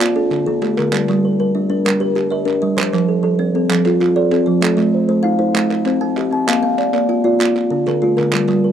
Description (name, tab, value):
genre	southern african traditional, mbira-style interlocking cycle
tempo	130 BPM (dotted quarters)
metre	12/8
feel	straight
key	G equiheptatonic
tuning	A4 = 439 Hz
part	kalimba	arpeggios	0.0-8.7 s	D3 to A5-29c	-17 LUFS	left 3 dB	none
part	kalimba	arpeggios	0.0-8.7 s	D3 to A5-29c	-18 LUFS	right 5 dB	none
part	group handclap	percussion	0.0-8.6 s	none	-23 LUFS	right 6 dB	none
room	little or no reverb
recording	dry, close 1970s-style studio recording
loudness	-14 LUFS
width	side -9 dB against mid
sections	0.9-8.7 A section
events	none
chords	0.0 Dm; 0.9 Gm; 2.8 F; 4.6 Am; 5.6 C; 6.5 Bb; 7.4 Dm